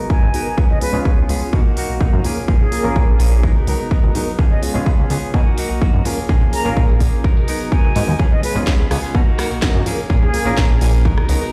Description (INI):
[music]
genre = filtered disco house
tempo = 126 BPM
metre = 4/4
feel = straight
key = unclear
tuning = A4 = 440 Hz
[part]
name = reed electric piano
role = accompaniment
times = 0.0-11.5 s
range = G#3 to A#4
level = -27 LUFS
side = equal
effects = phaser, sidechain pumping, low-pass filter
[part]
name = direct-recorded clean electric guitar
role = riff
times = 0.0-11.5 s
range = E#3 to A#4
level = -29 LUFS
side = equal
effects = sidechain pumping, low-pass filter
[part]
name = silver concert flute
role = melody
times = 0.1-10.6 s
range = G#4 to A#5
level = -28 LUFS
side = equal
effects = vintage 12-bit sampler grit, sidechain pumping, low-pass filter, delay
[part]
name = electronic kick drum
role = drums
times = 0.1-11.2 s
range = none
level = -18 LUFS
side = equal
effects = studio reverb
[part]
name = tambourine and congas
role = percussion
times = 0.1-11.5 s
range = none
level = -29 LUFS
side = equal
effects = sidechain pumping on perc, low-pass filter on perc
[part]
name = fat analog bass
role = bass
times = 0.2-11.4 s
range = G#1 to B2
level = -21 LUFS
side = equal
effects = sidechain pumping, low-pass filter
[part]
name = house drum kit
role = drums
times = 0.3-11.4 s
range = hi-hat, rim click, snare drum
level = -30 LUFS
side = equal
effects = sidechain pumping on hats, studio reverb
[sound]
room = digital ambience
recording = played on a big sound system in a bare room, stone room reverb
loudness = -16 LUFS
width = mono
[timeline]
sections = 0.0-11.5 A section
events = none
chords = 0.0 G#m9; 0.6 C#7; 1.5 Bmaj7; 2.2 A#m7; 3.4 G#m9; 4.4 C#7; 5.3 Bmaj7; 6.1 A#m7; 7.2 G#m9; 8.2 C#7; 9.1 Bmaj7; 9.9 A#m7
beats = 0.10 | 0.58 1.05 1.53 2.01 | 2.48 2.96 3.44 3.91 | 4.39 4.86 5.34 5.82 | 6.29 6.77 7.24 7.72 | 8.20 8.67 9.15 9.62 | 10.10 10.58 11.05